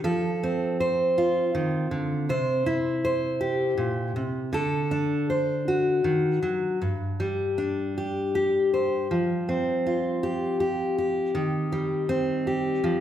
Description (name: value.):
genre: folk, solo fingerstyle acoustic guitar.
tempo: 80 BPM.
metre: 3/4.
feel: rubato.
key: unclear.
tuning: A4 = 439 Hz.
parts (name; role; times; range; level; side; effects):
fingerpicked steel-string acoustic guitar; solo; 0.0-13.0 s; G2 to C5; -23 LUFS; equal; none.
room: wet large studio reverb, RT60 1.3 s.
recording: heard from further back in the room.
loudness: -23 LUFS.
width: side -10 dB against mid.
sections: 0.0-6.8 A section; 6.8-13.0 B section.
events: none.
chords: 0.0 F; 2.3 C; 4.5 D; 6.8 G5; 9.1 Fsus2; 11.4 Cm/Eb.